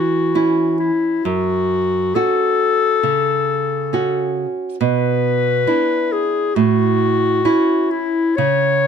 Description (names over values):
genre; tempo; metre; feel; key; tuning
romantic duo for clarinet and classical guitar; 68 BPM; 4/4; rubato; A major; A4 = 439 Hz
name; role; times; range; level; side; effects
clear clarinet; melody; 0.0-8.9 s; E4 to C#5; -18 LUFS; left 6 dB; slapback echo
nylon-string guitar; accompaniment; 0.0-8.9 s; F#2 to F#4; -18 LUFS; right 5 dB; none
room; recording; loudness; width
light reverb; close, detailed microphones; -15 LUFS; side -7 dB against mid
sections
0.0-8.9 A section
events
none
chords
0.0 A (rootless); 1.3 F#m; 4.8 E5/B; 6.6 A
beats
0.36 | 1.27 2.16 3.04 3.93 | 4.81 5.68 6.57 7.44 | 8.38